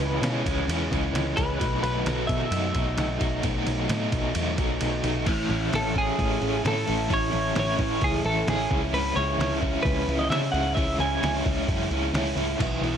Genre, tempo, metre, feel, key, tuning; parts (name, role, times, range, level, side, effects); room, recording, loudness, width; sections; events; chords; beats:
indie rock; 131 BPM; 4/4; straight; A4 = 438 Hz
twelve-string electric guitar; melody; 0.0-11.4 s; G#4 to G#5; -28 LUFS; right 1 dB; harmonic tremolo, slapback echo, plate reverb
biting overdriven guitar; riff; 0.0-13.0 s; A2 to E4; -26 LUFS; equal; tremolo
overdriven picked electric bass; bass; 0.0-13.0 s; A1 to C#3; -29 LUFS; equal
lo-fi sampler-style drum kit; drums; 0.0-12.9 s; crash cymbal, hi-hat, kick drum, ride cymbal, snare drum; -30 LUFS; equal; overdrive
light reverb; -23 LUFS; side -8 dB against mid
0.0-5.3 A section; 5.3-13.0 B section
kick and snare drop out 4.8-5.3
0.0 C#m7; 1.6 B7sus4; 5.3 Amaj7; 8.7 C#m
0.22 0.68 1.14 | 1.60 2.06 2.52 2.98 | 3.43 3.89 4.35 4.81 | 5.27 5.72 6.18 6.64 | 7.10 7.56 8.02 8.47 | 8.93 9.39 9.85 10.31 | 10.77 11.23 11.69 12.14 | 12.60